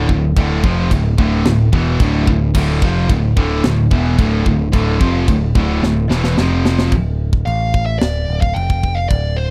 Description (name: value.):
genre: heavy metal.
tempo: 110 BPM.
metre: 4/4.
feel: straight.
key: D minor.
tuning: A4 = 440 Hz.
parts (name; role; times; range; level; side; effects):
heavy high-gain guitar; riff; 0.0-6.9 s; D2 to F3; -23 LUFS; equal; distortion.
scooped high-gain guitar; riff; 0.0-6.9 s; D2 to F3; -24 LUFS; equal; distortion.
sludgy distorted guitar; riff; 0.0-6.9 s; D2 to F3; -24 LUFS; equal; none.
growling picked electric bass; bass; 0.0-9.5 s; D1 to A1; -20 LUFS; equal; overdrive.
tight metal drum kit; drums; 0.1-9.2 s; china cymbal, crash cymbal, kick drum, snare drum; -18 LUFS; equal; none.
high-gain lead guitar; melody; 7.5-9.5 s; C5 to G5; -24 LUFS; equal; distortion.
room: small room ambience.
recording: dry, close 1970s-style studio recording.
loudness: -16 LUFS.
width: mono.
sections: 0.0-6.9 A section; 6.9-9.5 B section.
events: drum fill 5.8-6.9.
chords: 0.0 Dm; 6.4 F5; 6.9 Dm.